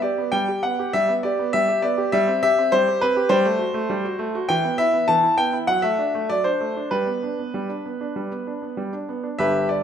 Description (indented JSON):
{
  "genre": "classical-period piano sonatina",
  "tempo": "100 BPM",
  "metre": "4/4",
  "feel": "straight",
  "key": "G major",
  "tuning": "A4 = 440 Hz",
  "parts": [
    { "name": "clear concert grand piano", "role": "solo", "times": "0.0-9.8 s", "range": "G1 to A5", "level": "-19 LUFS", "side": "equal", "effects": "none" }
  ],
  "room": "moderate recital hall reverb, RT60 1.5 s",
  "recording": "minimal, uncompressed stereo recording",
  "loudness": "-19 LUFS",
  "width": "side -8 dB against mid",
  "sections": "0.0-9.4 A section",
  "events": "none",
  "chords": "0.0 G; 2.1 C5/G; 3.3 Gsus24; 4.5 E5; 5.7 D/F#; 6.9 G"
}